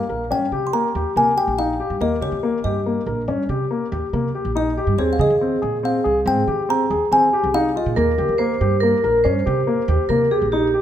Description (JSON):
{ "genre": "contemporary instrumental, chamber music in an uneven meter", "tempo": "141 BPM", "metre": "7/4", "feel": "straight", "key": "Eb mixolydian", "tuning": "A4 = 442 Hz", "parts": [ { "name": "kalimba", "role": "melody", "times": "0.0-10.5 s", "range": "Db5 to C6", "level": "-22 LUFS", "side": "equal", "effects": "none" }, { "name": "warm concert grand piano", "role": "arpeggios", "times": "0.0-10.8 s", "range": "Bb3 to Bb4", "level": "-22 LUFS", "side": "left 4 dB", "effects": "none" }, { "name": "upright bass", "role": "bass", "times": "0.1-10.7 s", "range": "Bb1 to Eb3", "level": "-24 LUFS", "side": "right 2 dB", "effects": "none" }, { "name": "vibraphone with medium hard mallets", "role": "second line", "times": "5.0-10.8 s", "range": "G4 to C5", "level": "-21 LUFS", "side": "right 2 dB", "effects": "none" } ], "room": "moderate recital hall reverb, RT60 1.6 s", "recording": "none", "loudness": "-17 LUFS", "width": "side -10 dB against mid", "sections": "0.0-10.8 A section", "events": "none", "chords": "0.0 Eb; 5.0 Fm; 8.0 Eb", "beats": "0.31 0.73 1.16 1.58 | 2.01 2.43 2.86 3.28 3.71 4.13 4.56 | 4.99 5.41 5.84 6.26 6.69 7.11 7.54 | 7.96 8.39 8.81 9.24 9.67 10.09 10.52" }